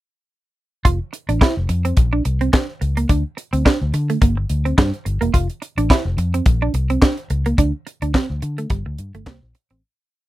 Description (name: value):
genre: early-eighties boogie funk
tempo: 107 BPM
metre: 4/4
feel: swing 56% on 16ths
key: unclear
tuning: A4 = 440 Hz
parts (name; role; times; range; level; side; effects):
- clean electric guitar; riff; 0.8-9.8 s; G3 to F4; -22 LUFS; right 4 dB; analog chorus
- vintage muted fingered electric bass; bass; 0.9-9.8 s; E1 to D3; -20 LUFS; left 1 dB; none
- tight funk drum kit; drums; 0.9-9.8 s; handclaps, hi-hat, kick drum, snare drum; -16 LUFS; equal; none
room: little or no reverb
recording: none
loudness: -17 LUFS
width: side -16 dB against mid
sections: 0.9-9.8 breakdown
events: fade-out 7.6-9.8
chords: 0.9 N.C.; 2.0 Bb; 3.1 D5; 4.2 Gm; 5.3 N.C.; 6.5 Bb; 7.6 D5; 8.7 G5; 9.3 Am